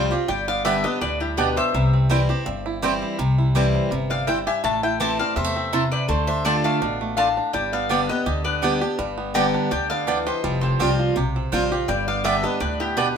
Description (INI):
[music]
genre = bluegrass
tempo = 166 BPM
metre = 4/4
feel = swing 53% on 8ths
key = C major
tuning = A4 = 443 Hz
[part]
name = bluegrass banjo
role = melody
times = 0.0-13.2 s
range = G3 to G4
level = -29 LUFS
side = right 7 dB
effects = none
[part]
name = picked steel-string acoustic guitar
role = accompaniment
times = 0.0-13.2 s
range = G2 to G4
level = -25 LUFS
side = left 1 dB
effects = none
[part]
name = mandolin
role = stabs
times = 0.0-13.1 s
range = A3 to A5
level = -25 LUFS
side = right 7 dB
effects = none
[part]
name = upright bass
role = bass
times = 0.0-13.2 s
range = F1 to E2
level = -25 LUFS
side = equal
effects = none
[part]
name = mandolin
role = melody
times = 0.3-13.2 s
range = G4 to Bb5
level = -26 LUFS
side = left 2 dB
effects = none
[part]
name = lap resonator guitar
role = second line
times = 0.3-13.1 s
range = E4 to G5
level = -28 LUFS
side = left 4 dB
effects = none
[sound]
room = moderate studio reverb, RT60 0.7 s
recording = minimal, uncompressed stereo recording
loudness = -19 LUFS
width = side -7 dB against mid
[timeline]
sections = 0.0-3.2 A section; 3.2-13.2 A section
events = none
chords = 0.3 G; 1.7 C; 4.6 Am; 6.1 Dm; 7.5 G; 10.4 Fsus2; 11.9 G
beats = | 0.29 0.65 1.01 1.38 | 1.74 2.10 2.46 2.83 | 3.19 3.55 3.91 4.28 | 4.64 5.00 5.36 5.73 | 6.09 6.45 6.81 7.18 | 7.54 7.90 8.26 8.63 | 8.99 9.35 9.71 10.07 | 10.44 10.80 11.16 11.52 | 11.88 12.25 12.61 12.97